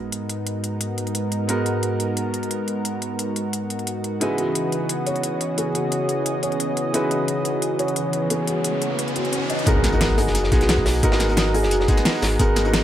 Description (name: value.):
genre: liquid drum and bass.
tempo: 176 BPM.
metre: 4/4.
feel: swing 53% on 16ths.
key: G# minor.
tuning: A4 = 440 Hz.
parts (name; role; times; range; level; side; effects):
clear baby grand piano; accompaniment; 0.0-12.8 s; C#3 to B4; -26 LUFS; right 2 dB; digital delay.
lush unison pad; sustained chords; 0.0-12.8 s; G#2 to F#5; -26 LUFS; equal; chorus, sidechain pumping.
sub drop, riser and impact; sound effects; 0.0-0.1, 8.0-11.0 s; none; -28 LUFS; equal; none.
pop drum kit; drums; 0.1-12.8 s; hi-hat, snare drum; -25 LUFS; equal; small room ambience.
felt-muted upright piano; arpeggios; 4.2-12.8 s; F#4 to D#5; -26 LUFS; left 1 dB; dub echo.
warm sub bass; bass; 9.7-12.8 s; F#1 to B1; -23 LUFS; equal; none.
crunchy breakbeat drum kit; drums; 9.7-12.8 s; hi-hat, snare drum; -28 LUFS; equal; high-pass filter on hats, small room ambience, high-pass filter on snare, high-pass filter on room.
electronic kick drum; drums; 9.7-12.5 s; none; -20 LUFS; equal; small room ambience.
room: light reverb, small room ambience.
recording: none.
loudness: -20 LUFS.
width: side -11 dB against mid.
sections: 0.0-9.7 A section; 9.7-12.8 B section.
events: riser 8.0-9.7; drop 9.7-12.8; impact 9.7-11.0.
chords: 0.0 G#m9; 4.2 C#m11; 9.7 G#m9.